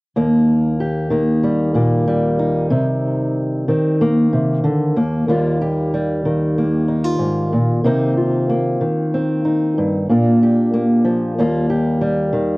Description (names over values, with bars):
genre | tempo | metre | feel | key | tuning
folk | 94 BPM | 4/4 | straight | Eb major | A4 = 441 Hz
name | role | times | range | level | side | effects
fingerpicked old ladder-braced acoustic guitar | accompaniment | 0.2-12.6 s | Eb2 to G4 | -15 LUFS | equal | cassette tape
room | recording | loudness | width
wet booth ambience, RT60 0.2 s | home recording on cassette | -15 LUFS | side -24 dB against mid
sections
0.2-5.3 A section; 5.3-12.6 B section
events
none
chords
0.2 Eb; 2.7 Cm7; 5.0 Eb5; 5.3 Ebadd9; 7.8 Cm7; 10.1 Bb; 11.4 Ebadd9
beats
| 0.16 0.80 1.44 2.08 | 2.72 3.36 4.00 4.64 | 5.28 5.92 6.57 7.21 | 7.85 8.49 9.13 9.77 | 10.41 11.05 11.69 12.33